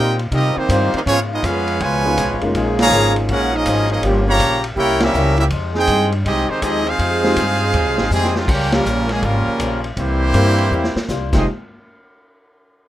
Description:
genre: jazz, big band swing.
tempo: 162 BPM.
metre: 4/4.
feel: swing 65% on 8ths.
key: F minor.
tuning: A4 = 440 Hz.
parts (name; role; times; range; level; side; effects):
brilliant trumpet section; melody; 0.0-11.5 s; G3 to C6; -19 LUFS; equal; none.
bright trombone section; second line; 0.0-11.4 s; F2 to Ab4; -22 LUFS; right 3 dB; none.
picked acoustic archtop guitar; accompaniment; 0.0-11.4 s; Gb2 to G4; -28 LUFS; left 6 dB; none.
upright bass; bass; 0.0-11.4 s; F1 to C3; -20 LUFS; equal; none.
vintage drum kit; drums; 0.2-11.4 s; crash cymbal, hi-hat, kick drum, ride cymbal, snare drum; -25 LUFS; equal; none.
warm grand piano; accompaniment; 2.0-11.5 s; F3 to G4; -21 LUFS; left 1 dB; none.
clear trombone section; sustained chords; 2.6-8.4 s; E3 to Bb4; -27 LUFS; equal; none.
room: light reverb.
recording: rough home demo mix.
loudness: -15 LUFS.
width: side -13 dB against mid.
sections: 0.0-8.5 A section; 8.5-11.5 B section; 11.5-12.9 C section.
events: band accent 2.7, 5.0, 8.7; drum fill 8.1-8.5, 10.7-11.1.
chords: 0.0 Abmaj13; 1.1 Db7; 2.5 Gbmaj13; 4.0 Gm7b5; 4.8 C7b9; 5.5 Fm9; 8.5 Gm7b5; 10.0 C7; 11.3 Fm9; 11.5 N.C..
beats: 0.32 0.69 | 1.06 1.43 1.80 2.17 | 2.54 2.91 3.29 3.66 | 4.03 4.40 4.77 5.14 | 5.51 5.88 6.25 6.62 | 7.00 7.37 7.74 8.11 | 8.48 8.85 9.22 9.60 | 9.97 10.34 10.71 11.08 | 11.46.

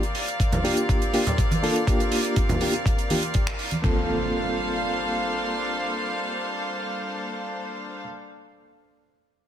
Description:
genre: nu-disco, nu disco.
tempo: 122 BPM.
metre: 4/4.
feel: straight.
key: G minor.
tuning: A4 = 440 Hz.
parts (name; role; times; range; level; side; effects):
reed electric piano; accompaniment; 0.0-8.1 s; Bb3 to A4; -28 LUFS; equal; fast tremolo, sidechain pumping, dub echo.
rich chamber string section; sustained chords; 0.0-8.0 s; G3 to F5; -28 LUFS; equal; sidechain pumping.
damped 70s drum kit; drums; 0.0-3.8 s; finger snaps, hi-hat; -31 LUFS; right 4 dB; none.
electronic kick drum; drums; 0.4-4.0 s; none; -24 LUFS; equal; none.
congas; percussion; 0.5-3.8 s; none; -28 LUFS; right 2 dB; none.
impact; sound effects; 3.8-8.1 s; none; -32 LUFS; equal; none.
room: light reverb, small room ambience.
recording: none.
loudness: -22 LUFS.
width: side -10 dB against mid.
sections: 0.0-3.8 A section; 3.8-7.8 B section.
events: none.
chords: 0.0 C9sus4; 3.8 Gm11.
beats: 0.40 0.89 1.38 | 1.87 2.36 2.85 3.35 | 3.84 4.33 4.82 5.31 | 5.81 6.30 6.79 7.28.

